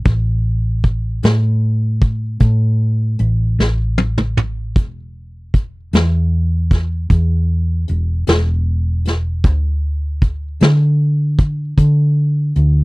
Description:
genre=slow blues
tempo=51 BPM (dotted quarters)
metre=12/8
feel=straight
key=unclear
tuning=A4 = 440 Hz
part: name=hollow-body short-scale fingered electric bass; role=bass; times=0.0-12.8 s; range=E1 to D3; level=-15 LUFS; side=equal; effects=none
part: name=vintage brush drum kit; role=drums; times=0.1-12.7 s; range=hi-hat, kick drum, snare drum, toms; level=-14 LUFS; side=equal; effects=none
room=little or no reverb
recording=dry, close 1970s-style studio recording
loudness=-14 LUFS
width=side -24 dB against mid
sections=0.0-12.8 A section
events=drum fill 3.6-4.8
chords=none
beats=| 0.06 1.24 2.41 3.59 | 4.76 5.93 7.10 8.27 | 9.44 10.61 11.78

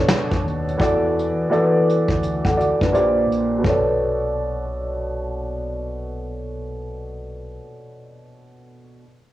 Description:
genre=lo-fi hip hop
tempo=84 BPM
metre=4/4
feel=swing 64% on 16ths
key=B minor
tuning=A4 = 440 Hz
part: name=warm upright piano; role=accompaniment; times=0.0-9.0 s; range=A#2 to F#5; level=-20 LUFS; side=equal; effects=cassette tape, low-pass filter
part: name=deep dub fingered electric bass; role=bass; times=0.0-7.6 s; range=A#1 to E2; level=-30 LUFS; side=left 1 dB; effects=none
part: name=vintage brush drum kit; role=drums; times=0.1-3.9 s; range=hi-hat, kick drum, snare drum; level=-22 LUFS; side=equal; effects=none
room=moderate spring reverb, RT60 1.7 s, studio reverb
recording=home recording on cassette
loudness=-18 LUFS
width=side -15 dB against mid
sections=0.0-3.6 A section; 3.6-6.5 B section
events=filter sweep on upright piano 0.0-3.6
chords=0.0 Bm9; 0.8 E9sus4; 2.9 A#69; 3.6 Bm9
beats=0.07 | 0.79 1.50 2.22 2.93 | 3.65 4.36 5.07 5.79

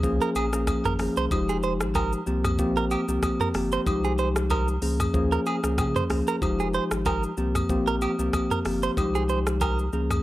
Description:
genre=afrobeats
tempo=94 BPM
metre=4/4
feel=swing 55% on 16ths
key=F minor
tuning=A4 = 436 Hz
part: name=bell-like tine electric piano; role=accompaniment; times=0.0-10.2 s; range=F3 to Ab4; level=-26 LUFS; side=left 1 dB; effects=none
part: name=warm sub bass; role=bass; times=0.0-10.2 s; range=F1 to Db3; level=-29 LUFS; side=equal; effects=none
part: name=afro-pop drum kit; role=drums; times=0.0-10.2 s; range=hi-hat, kick drum, rim click, shaker, toms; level=-29 LUFS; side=equal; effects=none
part: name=direct-recorded clean electric guitar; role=riff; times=0.2-9.8 s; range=G4 to C5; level=-30 LUFS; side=right 6 dB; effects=spring reverb, analog delay
part: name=agogo bells and woodblock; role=percussion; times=0.4-10.2 s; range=none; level=-34 LUFS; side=left 2 dB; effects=none
room=little or no reverb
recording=dry, gritty hardware recording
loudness=-22 LUFS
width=side -16 dB against mid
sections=0.0-10.2 A section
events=none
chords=0.0 Bbm7; 1.3 Fm9; 2.3 C7sus4; 3.9 Fm9/C; 4.8 Bbm7/Db; 6.4 Fm9; 7.4 C7sus4; 9.0 Fm9/C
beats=0.04 0.67 | 1.31 1.95 2.59 3.23 | 3.87 4.50 5.14 5.78 | 6.42 7.06 7.70 8.33 | 8.97 9.61

